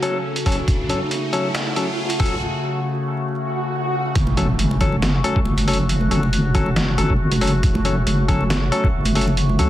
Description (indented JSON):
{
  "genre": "deep dubstep",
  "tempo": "138 BPM",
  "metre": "4/4",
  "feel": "swing 54% on 16ths, half-time",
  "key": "F# minor",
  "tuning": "A4 = 440 Hz",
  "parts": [
    { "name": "overtone-sweeping drone", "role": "sustained chords", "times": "0.0-9.7 s", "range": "C#3 to F#4", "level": "-26 LUFS", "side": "left 1 dB", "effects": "chorus, built-in reverb" },
    { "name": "barky tine electric piano", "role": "stabs", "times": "0.0-9.7 s", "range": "F#3 to A4", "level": "-25 LUFS", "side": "left 3 dB", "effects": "low-pass filter, dub echo" },
    { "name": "deep soft wobble bass", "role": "bass", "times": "0.0-9.7 s", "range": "F#1 to C#2", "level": "-21 LUFS", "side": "equal", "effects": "chorus, high-pass filter" },
    { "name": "trip hop sampler-style drum kit", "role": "drums", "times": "0.0-9.7 s", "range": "hi-hat, snare drum", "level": "-25 LUFS", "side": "right 1 dB", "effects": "high-pass filter on hats, studio reverb, high-pass filter on snare" },
    { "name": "riser, swell and impact", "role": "sound effects", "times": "0.0-5.9 s", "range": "none", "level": "-27 LUFS", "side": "right 1 dB", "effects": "none" },
    { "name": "electronic kick drum", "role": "drums", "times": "0.5-8.9 s", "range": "none", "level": "-21 LUFS", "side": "equal", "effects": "studio reverb" },
    { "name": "congas", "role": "percussion", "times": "4.3-9.7 s", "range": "none", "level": "-25 LUFS", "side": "right 2 dB", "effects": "dub echo" }
  ],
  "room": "light reverb",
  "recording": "dense, heavily limited modern master, vinyl crackle",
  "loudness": "-17 LUFS",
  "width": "side -13 dB against mid",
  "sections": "0.0-4.2 A section; 4.2-9.7 B section",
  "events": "build-up 0.0-4.2; riser 0.0-2.4; break 2.4-4.2; swell 3.4-4.2; drop 4.2-9.7; impact 4.2-5.9",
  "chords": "0.0 F#m"
}